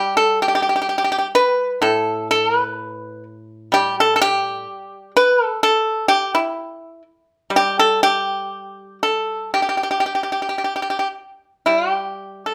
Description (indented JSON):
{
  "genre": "chinese traditional, Chinese solo plucked strings",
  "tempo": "54-65 BPM",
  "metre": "4/4",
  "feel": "rubato",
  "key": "G gong mode",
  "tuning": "A4 = 439 Hz",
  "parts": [
    { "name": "pipa", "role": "solo", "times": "0.0-12.5 s", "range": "A2 to B4", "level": "-19 LUFS", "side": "equal", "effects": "none" }
  ],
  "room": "moderate large studio reverb, RT60 0.9 s",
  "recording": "band playing live in one room",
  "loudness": "-19 LUFS",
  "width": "mono",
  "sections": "0.0-11.7 A section",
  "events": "none",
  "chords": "none"
}